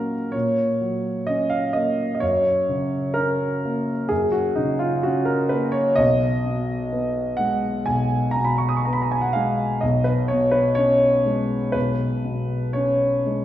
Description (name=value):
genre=classical, romantic nocturne for solo piano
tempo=63 BPM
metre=4/4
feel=rubato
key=F# major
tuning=A4 = 440 Hz
part: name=warm grand piano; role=solo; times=0.0-13.4 s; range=B1 to D#6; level=-19 LUFS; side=equal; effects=none
room=wet scoring stage reverb, RT60 1.7 s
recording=heard from further back in the room, nothing above 10.7 kHz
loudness=-19 LUFS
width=side -12 dB against mid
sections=0.0-13.4 A section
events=none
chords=0.0 F#/A#; 2.2 F#; 6.0 G#m/B; 9.8 C#5/B